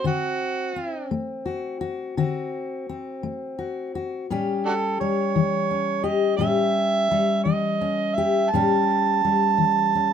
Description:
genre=acoustic country blues, solo or duo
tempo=57 BPM (dotted quarters)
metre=12/8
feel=straight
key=A mixolydian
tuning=A4 = 444 Hz
part: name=overdriven harmonica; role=melody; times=0.0-10.1 s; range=D4 to A5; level=-22 LUFS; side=right 6 dB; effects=none
part: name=fingerpicked steel-string acoustic guitar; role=accompaniment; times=0.0-10.1 s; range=A2 to G4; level=-24 LUFS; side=left 5 dB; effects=none
room=light reverb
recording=minimal, uncompressed stereo recording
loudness=-21 LUFS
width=side -8 dB against mid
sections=0.0-10.1 A section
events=none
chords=0.0 D7; 4.3 A7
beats=| 0.05 1.11 2.17 3.23 | 4.29 5.34 6.40 7.46 | 8.53 9.59

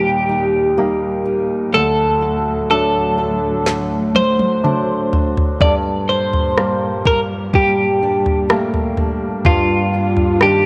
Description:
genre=pop ballad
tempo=62 BPM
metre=4/4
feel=straight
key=G minor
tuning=A4 = 440 Hz
part: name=twelve-string electric guitar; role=melody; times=0.0-10.7 s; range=F4 to D5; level=-19 LUFS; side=equal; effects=none
part: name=clear concert grand piano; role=accompaniment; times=0.0-10.7 s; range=D2 to Eb4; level=-24 LUFS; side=equal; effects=none
part: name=muted studio string section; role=sustained chords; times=0.0-10.7 s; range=D2 to F4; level=-29 LUFS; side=equal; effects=none
part: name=fingerpicked steel-string acoustic guitar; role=arpeggios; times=0.0-10.7 s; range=G2 to A4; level=-27 LUFS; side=equal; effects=none
part: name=smooth R&B drum kit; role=drums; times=3.7-10.6 s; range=kick drum, rim click, snare drum, toms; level=-20 LUFS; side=equal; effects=none
room=light reverb, studio reverb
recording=none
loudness=-17 LUFS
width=mono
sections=0.0-10.7 A section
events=drum fill 3.7-5.6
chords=0.0 Eb; 1.7 D; 5.6 Gmadd9; 9.5 Ebmaj7/G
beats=0.77 | 1.73 2.69 3.66 4.63 | 5.61 6.57 7.54 8.50 | 9.45 10.41

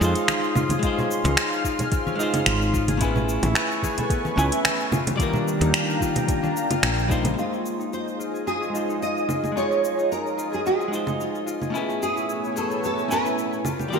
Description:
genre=sunset chillout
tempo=110 BPM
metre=4/4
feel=swing 54% on 16ths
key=Db major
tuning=A4 = 439 Hz
part: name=hollow-body jazz guitar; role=accompaniment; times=0.0-14.0 s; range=Eb3 to G#5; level=-28 LUFS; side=moving between left 4 dB and right 3 dB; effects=auto-pan, low-pass filter, ping-pong delay
part: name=lush unison pad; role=sustained chords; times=0.0-14.0 s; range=Eb3 to F6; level=-29 LUFS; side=equal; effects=chorus, phaser
part: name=concert harp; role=arpeggios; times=0.0-14.0 s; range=Bb3 to A4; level=-29 LUFS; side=left 5 dB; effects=low-pass filter, ping-pong delay
part: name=woody fretless electric bass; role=bass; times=0.0-7.3 s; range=Ab1 to F2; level=-23 LUFS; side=equal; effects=tube saturation
part: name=smooth R&B drum kit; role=drums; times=0.0-14.0 s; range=cabasa, congas, finger snaps, hi-hat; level=-26 LUFS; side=right 1 dB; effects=overdrive, studio reverb, gated reverb
part: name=congas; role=percussion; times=0.3-7.4 s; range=none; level=-31 LUFS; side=right 1 dB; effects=none
part: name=electronic kick drum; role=drums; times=0.8-7.2 s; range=none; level=-26 LUFS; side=equal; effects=overdrive, studio reverb
part: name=nylon-string guitar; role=melody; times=7.4-14.0 s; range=F4 to Eb5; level=-26 LUFS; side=right 2 dB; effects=ensemble chorus, digital delay
room=wet lush hall reverb, RT60 1.8 s, digital ambience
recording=bright 1980s-style digital production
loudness=-21 LUFS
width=side -6 dB against mid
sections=0.0-7.4 A section; 7.4-14.0 B section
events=filter sweep on hollow-body jazz guitar 7.4-14.0; filter sweep on harp 7.4-14.0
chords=0.0 Dbmaj9; 3.0 Amaj9; 4.9 Ebmaj9; 7.4 Dbmaj9; 11.7 Amaj9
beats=0.28 | 0.83 1.37 1.92 2.46 | 3.01 3.56 4.10 4.65 | 5.19 5.74 6.28 6.83 | 7.37 7.92 8.46 9.01 | 9.56 10.10 10.65 11.19 | 11.74 12.28 12.83 13.37 | 13.92

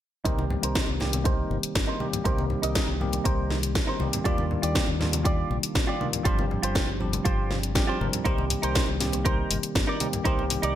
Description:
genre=nu-disco, nu disco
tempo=120 BPM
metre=4/4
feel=straight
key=C minor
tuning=A4 = 444 Hz
part: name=bell-like tine electric piano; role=accompaniment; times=0.2-10.8 s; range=Eb3 to Bb4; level=-31 LUFS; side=equal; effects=medium stereo tremolo, ping-pong delay
part: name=direct-recorded clean electric guitar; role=riff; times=0.2-10.8 s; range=Eb4 to Eb5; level=-32 LUFS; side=right 3 dB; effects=analog chorus, low-pass filter, ping-pong delay
part: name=fingered electric bass with an envelope filter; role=bass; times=0.3-10.8 s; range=G1 to Eb2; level=-30 LUFS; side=equal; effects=none
part: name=electronic kick drum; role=drums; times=0.3-10.4 s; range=none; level=-26 LUFS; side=equal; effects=none
part: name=house drum kit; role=drums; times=0.3-10.7 s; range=hi-hat, snare drum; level=-29 LUFS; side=left 2 dB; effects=gated reverb
part: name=congas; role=percussion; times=0.4-10.6 s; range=none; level=-35 LUFS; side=left 3 dB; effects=none
room=light reverb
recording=bright 1980s-style digital production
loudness=-23 LUFS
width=side -11 dB against mid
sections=0.3-10.8 A section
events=filter sweep on clean electric guitar 0.3-10.8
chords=0.3 Cm7; 4.3 Ebmaj9; 6.3 G7sus4; 8.3 Cm7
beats=| 0.26 0.76 1.25 1.75 | 2.25 2.75 3.25 3.75 | 4.25 4.75 5.25 5.75 | 6.25 6.75 7.25 7.75 | 8.26 8.76 9.26 9.76 | 10.26

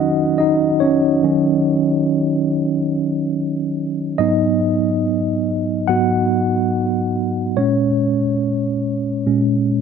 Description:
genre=R&B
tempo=71 BPM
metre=4/4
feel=swing 58% on 16ths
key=Eb minor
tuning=A4 = 439 Hz
part: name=mellow tine electric piano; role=solo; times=0.0-9.8 s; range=Ab2 to Gb5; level=-16 LUFS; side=equal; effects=medium stereo tremolo
room=moderate plate reverb, RT60 3.5 s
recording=none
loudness=-16 LUFS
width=side -6 dB against mid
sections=0.0-9.8 A section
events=tine electric piano solo 0.0-9.8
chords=0.0 Ebm7; 4.2 Abm7; 7.6 Bbm7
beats=| 0.81 1.65 2.50 3.34 | 4.19 5.03 5.88 6.72 | 7.57 8.41 9.26

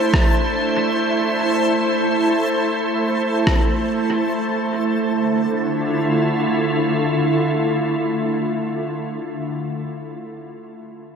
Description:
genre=ambient dub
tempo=free time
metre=none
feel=none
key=D minor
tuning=A4 = 444 Hz
part: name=soft additive organ-like pad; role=sustained chords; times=0.0-9.2 s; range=D3 to E5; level=-18 LUFS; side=right 1 dB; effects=ensemble chorus, built-in reverb
part: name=backwards swelling texture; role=texture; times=0.0-5.2 s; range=A5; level=-29 LUFS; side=left 3 dB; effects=built-in reverb, wide subtle chorus
part: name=electronic kick drum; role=drums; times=0.1-3.7 s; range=none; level=-18 LUFS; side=equal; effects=none
part: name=electronic rim click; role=drums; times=0.1-3.7 s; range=none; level=-28 LUFS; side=equal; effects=dub echo
room=wet huge ambient reverb, RT60 7.2 s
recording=dreamy mix soaked in reverb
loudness=-17 LUFS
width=side -6 dB against mid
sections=0.0-5.1 A section; 5.1-8.5 B section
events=none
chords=0.0 Am; 5.1 Dmadd9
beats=free time

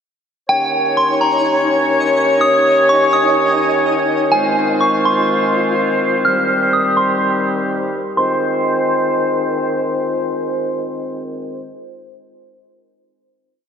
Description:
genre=hip hop, atmospheric cloud-rap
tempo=125 BPM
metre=4/4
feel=half-time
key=F minor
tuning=A4 = 441 Hz
part: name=delicate synth tine bell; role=melody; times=0.5-9.6 s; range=G5 to F6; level=-18 LUFS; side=right 1 dB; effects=chorus, low-pass filter, tape echo
part: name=warm woodwind section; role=sustained chords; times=0.5-11.7 s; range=Eb3 to Db5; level=-16 LUFS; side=equal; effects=none
part: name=twinkling granular texture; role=texture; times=0.9-6.2 s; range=Eb4 to Ab5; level=-25 LUFS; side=left 1 dB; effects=built-in reverb
room=wet lush hall reverb, RT60 2.8 s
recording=dreamy mix soaked in reverb, low-pass filter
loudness=-13 LUFS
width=side -7 dB against mid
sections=0.5-8.2 breakdown; 8.2-12.0 final chord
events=none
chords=0.5 Eb7; 4.3 Fm7; 6.2 Cm; 8.2 Fm7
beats=| 0.49 0.97 1.45 1.93 | 2.41 2.89 3.37 3.85 | 4.33 4.81 5.29 5.77 | 6.25 6.73 7.21 7.69 | 8.17 8.65 9.13 9.61 | 10.09 10.57 11.05 11.53

